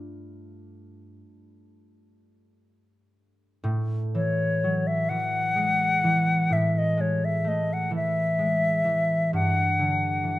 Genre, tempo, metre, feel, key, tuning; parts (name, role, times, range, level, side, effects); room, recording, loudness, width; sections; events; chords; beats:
classical, impressionist duo for flute and harp; 37-45 BPM (dotted quarters); 12/8; rubato; A4 = 441 Hz
concert harp; accompaniment; 0.0-10.4 s; G2 to B5; -26 LUFS; right 1 dB
concert flute; melody; 4.2-10.4 s; C#5 to F#5; -24 LUFS; left 2 dB
moderate recital hall reverb, RT60 1.3 s; close, detailed microphones; -22 LUFS; side -16 dB against mid
0.0-3.6 A section; 3.6-10.4 B section
0.0 G9; 3.6 A5; 9.3 G5
0.51 2.09 | 3.65 5.10 6.51 7.92 | 9.32